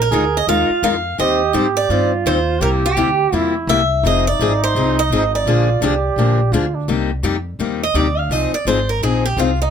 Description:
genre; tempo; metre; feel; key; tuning
acoustic string swing (jazz manouche); 169 BPM; 4/4; swing 63% on 8ths; unclear; A4 = 439 Hz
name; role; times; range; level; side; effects
picked swing-style acoustic guitar; melody; 0.0-9.7 s; Eb4 to F5; -19 LUFS; right 3 dB; none
mellow flugelhorn; second line; 0.0-6.9 s; D4 to Ab4; -21 LUFS; right 6 dB; none
upright bass; bass; 0.0-9.7 s; F1 to Ab2; -20 LUFS; equal; none
picked steel-string acoustic guitar; accompaniment; 0.1-9.5 s; C3 to C5; -20 LUFS; left 7 dB; none
room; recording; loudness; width
light reverb; none; -15 LUFS; side -8 dB against mid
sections
0.0-6.9 A section; 6.9-9.7 B section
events
steel-string acoustic guitar solo 6.9-9.7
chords
0.0 Bb7sus4; 1.2 Eb6; 2.6 C7; 4.0 Fm7; 5.5 Bb7; 6.9 Cm7; 8.3 Fm7

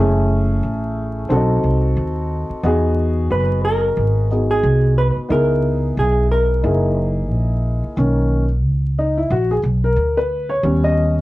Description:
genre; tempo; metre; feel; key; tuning
hip hop, jazz-hop; 90 BPM; 4/4; swing 59% on 16ths; B major; A4 = 440 Hz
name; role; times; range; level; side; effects
dark upright piano; accompaniment; 0.0-11.2 s; D#3 to D#5; -20 LUFS; left 1 dB; none
upright bass; bass; 0.0-11.2 s; F#1 to E2; -18 LUFS; equal; none
hollow-body jazz guitar; melody; 3.3-7.6 s; G#4 to B4; -20 LUFS; right 1 dB; slapback echo
room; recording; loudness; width
light reverb; worn, warbling old tape, cassette tape, vinyl crackle, warbly pitch drift; -15 LUFS; side -18 dB against mid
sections
0.0-8.0 A section; 8.0-11.2 B section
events
upright piano solo 8.0-11.2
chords
0.0 F#m7; 1.3 B7b9; 2.6 Emaj9; 5.3 C#m7; 6.6 F#13; 8.0 Bmaj9; 10.6 D#7b13

